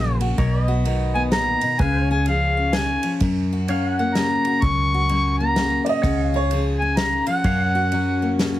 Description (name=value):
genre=honky-tonk and classic country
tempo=128 BPM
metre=3/4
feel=swing 62% on 8ths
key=F# major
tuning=A4 = 441 Hz
part: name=mellow harmonica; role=melody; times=0.0-8.3 s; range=E#5 to C#6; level=-22 LUFS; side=equal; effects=none
part: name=picked steel-string acoustic guitar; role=accompaniment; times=0.0-8.6 s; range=F#2 to G#4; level=-24 LUFS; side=left 2 dB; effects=none
part: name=pedal steel guitar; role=sustained chords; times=0.0-8.6 s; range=A#4 to F#5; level=-32 LUFS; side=left 2 dB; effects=none
part: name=vintage muted fingered electric bass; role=bass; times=0.0-8.6 s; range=A#1 to F#2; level=-23 LUFS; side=equal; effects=none
part: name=unplugged drum kit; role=drums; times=0.2-8.5 s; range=kick drum, ride cymbal, snare drum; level=-27 LUFS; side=equal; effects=none
part: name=bright upright piano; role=second line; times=5.8-6.6 s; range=C#5 to D#5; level=-23 LUFS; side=right 4 dB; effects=none
room=moderate booth ambience, RT60 0.2 s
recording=heavily compressed radio sound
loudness=-18 LUFS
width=side -14 dB against mid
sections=0.0-8.6 A section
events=none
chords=0.4 B; 1.8 C#; 3.2 F#; 6.0 C#; 7.4 F#